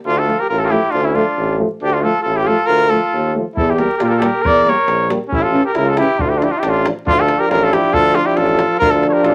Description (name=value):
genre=balkan folk, Balkan brass band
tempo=137 BPM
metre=2/4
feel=straight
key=D harmonic minor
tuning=A4 = 438 Hz
part: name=clear cornet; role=melody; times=0.1-9.3 s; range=E4 to D5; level=-19 LUFS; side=equal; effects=none
part: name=mellow trumpet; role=second line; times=0.1-9.3 s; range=C#4 to Bb4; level=-23 LUFS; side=equal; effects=none
part: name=clear tuba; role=bass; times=0.1-9.3 s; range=A1 to Bb2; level=-22 LUFS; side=equal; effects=none
part: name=clear euphonium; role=accompaniment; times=0.3-9.3 s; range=E3 to G3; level=-28 LUFS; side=equal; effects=none
part: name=dark trombone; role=accompaniment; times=0.3-9.3 s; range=A3 to D4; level=-22 LUFS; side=equal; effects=none
part: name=davul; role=percussion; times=3.6-9.3 s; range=none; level=-26 LUFS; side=equal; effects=none
room=moderate studio reverb, RT60 0.5 s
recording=vinyl crackle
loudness=-15 LUFS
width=mono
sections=0.1-7.1 A section; 7.1-9.3 A section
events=none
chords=0.1 Dm; 3.6 Edim; 5.3 A; 6.2 Dm